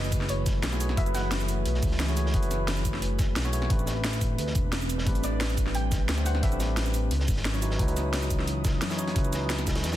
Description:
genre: liquid drum and bass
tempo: 176 BPM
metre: 4/4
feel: straight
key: unclear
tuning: A4 = 440 Hz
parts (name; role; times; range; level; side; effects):
- soft round pluck; melody; 0.0-1.6, 5.2-7.4 s; C#5 to G5; -37 LUFS; right 1 dB; lush chorus, digital delay
- tine electric piano; accompaniment; 0.0-10.0 s; F#3 to C#5; -33 LUFS; equal; digital delay
- ethereal airy pad; sustained chords; 0.0-10.0 s; E3 to D#6; -36 LUFS; equal; ensemble chorus, built-in reverb, sidechain pumping
- smooth synth bass; bass; 0.0-10.0 s; E1 to F#2; -29 LUFS; equal; tube saturation
- drum and bass drum kit; drums; 0.0-10.0 s; cabasa, hi-hat, snare drum; -33 LUFS; equal; overdrive
- crunchy breakbeat drum kit; drums; 0.1-10.0 s; hi-hat, snare drum; -38 LUFS; equal; high-pass filter on hats, high-pass filter on snare, high-pass filter on room
- electronic kick drum; drums; 0.1-9.7 s; none; -27 LUFS; equal; overdrive
room: light reverb, digital ambience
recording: dense, heavily limited modern master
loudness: -24 LUFS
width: side -13 dB against mid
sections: 0.0-10.0 A section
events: none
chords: 0.0 F#m11; 3.7 Am11; 7.1 C#m11

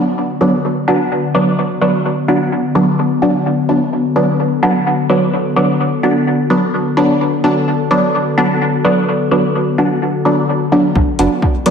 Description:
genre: dub techno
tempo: 128 BPM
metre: 4/4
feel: swing 55% on 16ths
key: B minor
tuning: A4 = 439 Hz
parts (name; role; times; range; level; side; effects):
- warbly tape-like pad; sustained chords; 0.0-11.7 s; D3 to D5; -18 LUFS; left 3 dB; chorus, built-in reverb, sidechain pumping
- filtered dub chord stab; stabs; 0.0-11.7 s; F#3 to D4; -13 LUFS; right 1 dB; chorus, phaser, cassette tape, sidechain pumping, dub echo
- round analog bass; bass; 11.0-11.3 s; F#1 to B1; -17 LUFS; equal; sidechain pumping
- electronic kick drum; drums; 11.0-11.5 s; none; -15 LUFS; equal; overdrive
- electronic hi-hat; drums; 11.2-11.7 s; none; -25 LUFS; left 3 dB; low-pass filter on hats
room: wet lush hall reverb, RT60 1.7 s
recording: dreamy mix soaked in reverb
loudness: -12 LUFS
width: side -6 dB against mid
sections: 0.0-11.0 A section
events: none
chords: 0.0 Bm

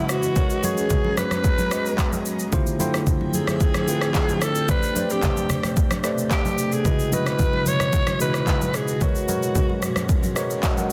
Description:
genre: amapiano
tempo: 111 BPM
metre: 4/4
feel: straight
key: unclear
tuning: A4 = 442 Hz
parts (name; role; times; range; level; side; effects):
- raspy alto saxophone; melody; 0.0-10.1 s; E4 to C#5; -28 LUFS; equal; digital delay
- tine electric piano; accompaniment; 0.0-10.9 s; C#3 to G5; -28 LUFS; equal; none
- granular cloud pad; sustained chords; 0.0-10.9 s; A#2 to A#5; -34 LUFS; equal; built-in reverb, sidechain pumping
- deep house drum kit; drums; 0.1-10.9 s; handclaps, kick drum, rim click, shaker; -26 LUFS; equal; none
- congas; percussion; 0.4-10.9 s; none; -32 LUFS; equal; none
room: light reverb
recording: dense, heavily limited modern master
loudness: -22 LUFS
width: mono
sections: 0.0-10.9 A section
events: none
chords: 0.4 G#m11; 2.5 Dm11; 4.7 Am11; 6.8 C#m11; 9.0 G#m11

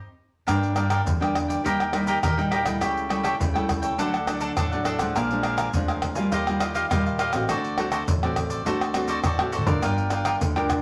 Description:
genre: samba and choro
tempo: 103 BPM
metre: 4/4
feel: straight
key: G minor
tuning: A4 = 442 Hz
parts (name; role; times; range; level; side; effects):
- cavaquinho; accompaniment; 0.5-10.8 s; D4 to Ab5; -29 LUFS; equal; none
- nylon-string guitar; accompaniment; 0.5-10.8 s; F2 to Bb4; -30 LUFS; equal; none
- upright bass; bass; 0.5-10.8 s; G1 to Eb3; -34 LUFS; equal; none
- tube shaker, surdo, pandeiro and tamborim; percussion; 0.5-10.8 s; none; -29 LUFS; equal; none
room: wet studio reverb, RT60 0.7 s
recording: none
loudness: -24 LUFS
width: mono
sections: 0.5-10.8 A section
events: stop 0.0-0.5; drum fill 9.4-9.8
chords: 0.5 Gm; 1.6 Eb; 2.8 A7/C#; 4.0 D; 5.2 Bb7; 6.3 Ebadd9; 7.5 D7; 9.8 Gm7

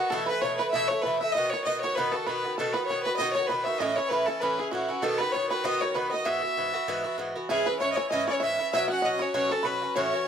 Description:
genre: celtic folk, Celtic reel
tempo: 195 BPM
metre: 4/4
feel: swing 55% on 8ths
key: unclear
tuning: A4 = 440 Hz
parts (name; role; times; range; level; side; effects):
- clear fiddle; melody; 0.0-10.3 s; F#4 to F#5; -28 LUFS; equal; none
- accordion; second line; 0.0-10.3 s; F#4 to F#5; -33 LUFS; left 4 dB; none
- bluegrass banjo; second line; 0.0-10.3 s; F#4 to F#5; -32 LUFS; right 3 dB; none
- Irish bouzouki; accompaniment; 0.0-10.3 s; G#2 to F#4; -30 LUFS; right 1 dB; none
room: moderate small room reverb, RT60 0.5 s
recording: none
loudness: -25 LUFS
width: side -8 dB against mid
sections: 0.0-7.5 A section; 7.5-10.3 B section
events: none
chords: 0.1 Asus2; 1.4 B; 3.8 A; 5.0 B; 6.3 Eadd9; 7.5 C#m; 8.7 Bsus2

